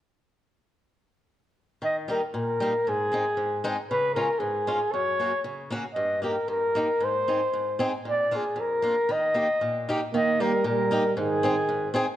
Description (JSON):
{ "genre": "alpine folk, alpine dance band", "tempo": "116 BPM", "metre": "2/4", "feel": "straight", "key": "Eb major", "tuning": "A4 = 440 Hz", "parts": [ { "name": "warm flugelhorn", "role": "melody", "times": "1.8-11.9 s", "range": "Ab4 to Eb5", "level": "-25 LUFS", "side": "equal", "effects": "none" }, { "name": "picked swing-style acoustic guitar", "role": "accompaniment", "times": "1.8-12.1 s", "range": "F2 to Ab4", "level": "-30 LUFS", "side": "equal", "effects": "none" }, { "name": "warm euphonium", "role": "second line", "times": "10.1-11.9 s", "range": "Eb3 to Bb3", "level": "-28 LUFS", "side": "right 6 dB", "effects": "none" } ], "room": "moderate scoring stage reverb, RT60 1.8 s", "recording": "worn, warbling old tape, cassette tape, warbly pitch drift", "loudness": "-23 LUFS", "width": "side -12 dB against mid", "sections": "1.8-10.1 A section; 10.1-12.2 A section", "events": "none", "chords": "1.8 Eb; 2.9 Ab; 3.9 Db; 4.9 Gb; 6.0 Eb/G; 7.0 Ab; 8.1 Bb; 9.1 Eb; 11.2 Ab", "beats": "| 1.81 2.33 | 2.85 3.37 | 3.89 4.41 | 4.92 5.44 | 5.97 6.49 | 7.01 7.53 | 8.05 8.57 | 9.08 9.60 | 10.12 10.64 | 11.16 11.67" }